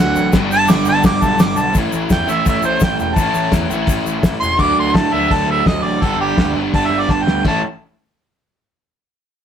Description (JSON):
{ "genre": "garage rock duo or trio", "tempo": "168 BPM", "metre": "4/4", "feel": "straight", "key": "A mixolydian", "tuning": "A4 = 441 Hz", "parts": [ { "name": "clear harmonica", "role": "melody", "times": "0.0-7.6 s", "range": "G4 to D6", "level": "-17 LUFS", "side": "right 1 dB", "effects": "overdrive" }, { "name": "raw garage guitar", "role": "riff", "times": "0.0-7.6 s", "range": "G2 to E4", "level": "-18 LUFS", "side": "right 1 dB", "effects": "overdrive" }, { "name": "growling picked electric bass", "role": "bass", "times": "0.0-7.6 s", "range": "E1 to A2", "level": "-24 LUFS", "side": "left 1 dB", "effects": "overdrive" }, { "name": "egg shaker", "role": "percussion", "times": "0.2-4.5 s", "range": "none", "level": "-33 LUFS", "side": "left 6 dB", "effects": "none" }, { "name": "cloth-damped thuddy drum kit", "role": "drums", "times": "0.3-7.5 s", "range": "crash cymbal, hi-hat, kick drum, snare drum", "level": "-16 LUFS", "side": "left 1 dB", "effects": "none" } ], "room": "light reverb", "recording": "rough rehearsal-room recording, warm saturation", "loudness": "-13 LUFS", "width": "side -8 dB against mid", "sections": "0.0-1.7 A section; 1.7-7.4 B section; 7.4-8.9 C section", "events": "harmonica solo 1.7-7.4; drum fill 7.1-7.4", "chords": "0.3 G; 1.7 A; 4.6 D; 6.0 G; 7.4 A5" }